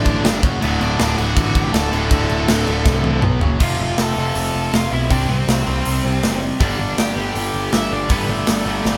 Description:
punk rock; 160 BPM; 4/4; straight; A4 = 439 Hz
high-gain lead guitar; melody; 0.0-9.0 s; A3 to A5; -27 LUFS; equal; distortion
distorted electric guitar; riff; 0.0-9.0 s; D2 to C4; -25 LUFS; equal; overdrive
tight distorted guitar; riff; 0.0-8.3 s; D2 to C4; -26 LUFS; equal; distortion
overdriven picked electric bass; bass; 0.0-9.0 s; D1 to C2; -25 LUFS; equal
tight metal drum kit; drums; 0.1-8.9 s; crash cymbal, hi-hat, kick drum, snare drum, toms; -22 LUFS; equal
light reverb; band playing live in one room; -18 LUFS; mono
0.0-3.6 A section; 3.6-9.0 B section
drum fill 2.9-3.6
0.2 G5; 0.4 F#5; 0.6 D; 3.2 B5; 3.4 F#5; 3.6 F; 5.1 C5; 6.6 G5
0.25 | 0.62 0.99 1.37 1.74 | 2.11 2.49 2.86 3.23 | 3.61 3.98 4.36 4.73 | 5.11 5.48 5.86 6.23 | 6.61 6.98 7.36 7.73 | 8.11 8.48 8.86

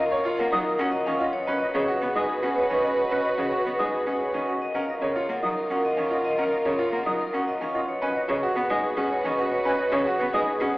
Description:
classical, minimalist pattern music; 110 BPM; 3/4; straight; A4 = 440 Hz
vibraphone with hard mallets; melody; 0.0-10.8 s; G#4 to A#5; -29 LUFS; left 2 dB
clear French horn; second line; 0.0-10.8 s; A#4 to B4; -29 LUFS; right 1 dB
warm symphonic string section; sustained chords; 0.0-10.8 s; E#4 to B4; -33 LUFS; equal
concert flute; arpeggios; 0.0-10.4 s; D#5 to D#6; -33 LUFS; equal
bright baby grand piano; arpeggios; 0.1-10.8 s; C#4 to C#5; -28 LUFS; right 1 dB
rich cello; accompaniment; 0.4-10.7 s; C#3 to C#4; -31 LUFS; equal
wet cathedral reverb, RT60 4.4 s; recorded in a church or concert hall, AM radio sound; -22 LUFS; side -19 dB against mid
0.0-10.8 A section
0.0 F#maj7; 1.3 G#m7; 4.6 F#maj7; 7.9 G#m7
0.25 0.79 | 1.34 1.88 2.43 | 2.97 3.52 4.07 | 4.61 5.16 5.70 | 6.25 6.79 7.34 | 7.88 8.43 8.97 | 9.52 10.06 10.61

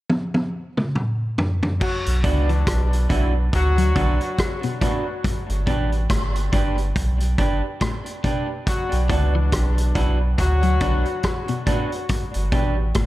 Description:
dub reggae; 70 BPM; 4/4; swing 58% on 16ths; B minor; A4 = 440 Hz
vintage drum kit; drums; 0.1-13.1 s; crash cymbal, hi-hat, kick drum, rim click, toms; -24 LUFS; equal
mellow horn section; second line; 1.8-11.6 s; B2 to F#4; -28 LUFS; left 3 dB; dub echo
warm sub bass; bass; 2.1-13.1 s; G1 to D2; -20 LUFS; equal
electric guitar through a small old amp; accompaniment; 2.2-12.8 s; D4 to B4; -28 LUFS; right 3 dB; spring reverb, dub echo
clean electric guitar; arpeggios; 2.2-13.1 s; G2 to F#3; -30 LUFS; left 4 dB; harmonic tremolo, dub echo
studio ambience; echo-heavy mix; -19 LUFS; side -16 dB against mid
0.0-1.8 A section; 1.8-13.1 B section
drum fill 0.1-1.8
0.0 N.C.; 1.8 Bm; 5.2 G; 8.7 Bm; 12.1 G
0.10 0.96 | 1.81 2.67 3.53 4.38 | 5.24 6.10 6.96 7.82 | 8.67 9.53 10.39 11.24 | 12.10 12.96

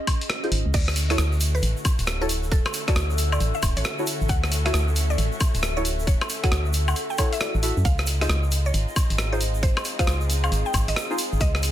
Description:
UK garage, two-step garage; 135 BPM; 4/4; swing 64% on 16ths; A4 = 440 Hz
warbly tape-like pad; texture; 0.0-11.7 s; D3 to C#6; -34 LUFS; left 1 dB; chorus, built-in reverb, phaser, sidechain pumping
breakbeat sampler-style drum kit; drums; 0.1-11.7 s; crash cymbal, hi-hat, rim click, woodblock; -27 LUFS; left 1 dB; soft clipping on snare
electronic kick drum; drums; 0.1-11.5 s; -22 LUFS; equal
deep mellow chord stab; stabs; 0.4-11.2 s; D#4 to E5; -31 LUFS; equal; chorus, cassette tape, dub echo
organ-like FM bass; bass; 0.5-11.7 s; D1 to F#2; -23 LUFS; equal
mallet-like synth pluck; melody; 0.7-11.6 s; A4 to G5; -33 LUFS; equal; chorus, dub echo
muted studio violin section; sustained chords; 0.7-11.7 s; G#3 to F#4; -37 LUFS; equal; sidechain pumping
egg shaker; percussion; 0.7-11.7 s; -35 LUFS; right 4 dB
light reverb; dense, heavily limited modern master; -21 LUFS; side -12 dB against mid
0.0-11.7 A section
0.0 C#maj9; 0.7 Dmaj9; 7.9 C#maj9
0.30 | 0.74 1.19 1.63 2.07 | 2.52 2.96 3.41 3.85 | 4.30 4.74 5.18 5.63 | 6.07 6.52 6.96 7.41 | 7.85 8.30 8.74 9.19 | 9.63 10.07 10.52 10.96 | 11.41

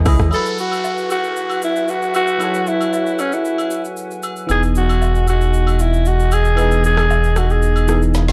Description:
amapiano; 115 BPM; 4/4; straight; F# dorian; A4 = 440 Hz
barking FM electric piano; accompaniment; 0.0-8.3 s; E3 to D#5; -27 LUFS; equal; chorus, phaser
small flute group; sustained chords; 0.0-8.3 s; F#4 to D#6; -31 LUFS; equal
afro-pop drum kit; drums; 0.1-8.3 s; hi-hat, kick drum, rim click, shaker, snare drum; -28 LUFS; equal
agogo bells and woodblock; percussion; 0.1-7.9 s; -32 LUFS; equal
growling alto saxophone; melody; 0.3-8.0 s; C#4 to A4; -21 LUFS; equal; tape echo
downlifter; sound effects; 0.3-4.5 s; -35 LUFS; equal
sub bass with octave; bass; 4.5-8.3 s; E1; -18 LUFS; equal
light reverb; dark, warm production; -17 LUFS; mono
0.3-8.3 A section
drum fill 8.1
0.3 F#m11; 4.5 Emaj7
| 0.32 0.84 1.36 1.89 | 2.41 2.93 3.45 3.97 | 4.50 5.02 5.54 6.06 | 6.58 7.10 7.63 8.15

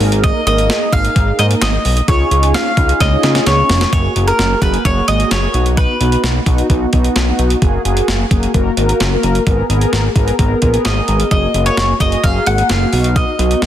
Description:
synth-pop; 130 BPM; 4/4; straight; A4 = 438 Hz
mellow synth brass; accompaniment; 0.0-13.7 s; Bb3 to Bb4; -18 LUFS; equal; chorus
fat analog bass; bass; 0.0-13.7 s; F1 to Db3; -16 LUFS; equal
clean 12-bit digital drum machine; drums; 0.0-13.7 s; handclaps, hi-hat, kick drum, snare drum; -17 LUFS; equal; overdrive
mandolin; melody; 0.2-6.4, 10.9-13.7 s; Bb4 to Gb5; -17 LUFS; equal; tape echo
light reverb; dense, heavily limited modern master; -11 LUFS; side -11 dB against mid
0.0-3.9 A section; 3.9-13.7 B section
drum fill 3.0-3.9
0.0 Absus2; 2.1 Dbadd9; 3.9 Gbadd9; 5.5 B; 7.6 Gbadd9; 9.5 Abmadd9; 11.3 Gbadd9; 12.9 B
| 0.24 0.70 1.16 1.62 | 2.08 2.54 3.00 3.47 | 3.93 4.39 4.85 5.31 | 5.77 6.24 6.70 7.16 | 7.62 8.08 8.54 9.01 | 9.47 9.93 10.39 10.85 | 11.31 11.77 12.24 12.70 | 13.16 13.62

